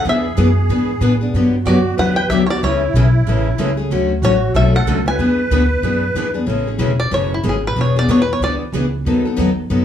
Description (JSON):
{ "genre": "acoustic string swing (jazz manouche)", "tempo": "186 BPM", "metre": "4/4", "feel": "swing 59% on 8ths", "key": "A major", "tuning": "A4 = 440 Hz", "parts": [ { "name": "bluegrass banjo", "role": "melody", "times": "0.0-8.5 s", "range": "E4 to G#5", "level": "-20 LUFS", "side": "left 1 dB", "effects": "none" }, { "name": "musette accordion", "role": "second line", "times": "0.0-6.3 s", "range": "E4 to B4", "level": "-23 LUFS", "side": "right 3 dB", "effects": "none" }, { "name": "picked steel-string acoustic guitar", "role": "accompaniment", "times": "0.0-9.8 s", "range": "C#3 to A4", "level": "-18 LUFS", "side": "left 3 dB", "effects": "none" }, { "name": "upright bass", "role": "bass", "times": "0.0-9.8 s", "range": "E1 to A2", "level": "-18 LUFS", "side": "equal", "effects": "none" }, { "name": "picked steel-string acoustic guitar", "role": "accompaniment", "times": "0.1-9.8 s", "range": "D3 to B4", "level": "-24 LUFS", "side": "right 3 dB", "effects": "none" } ], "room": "wet club reverb, RT60 0.7 s", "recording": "heard from further back in the room, small room ambience", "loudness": "-14 LUFS", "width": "side -10 dB against mid", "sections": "0.0-6.5 A section; 6.5-9.8 B section", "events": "five-string banjo solo 6.5-9.8", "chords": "0.0 E7; 1.3 Gmaj7; 2.6 Amaj7; 3.9 Dmaj7; 5.2 E7; 6.5 Amaj7; 7.8 E7; 9.1 B7/D#" }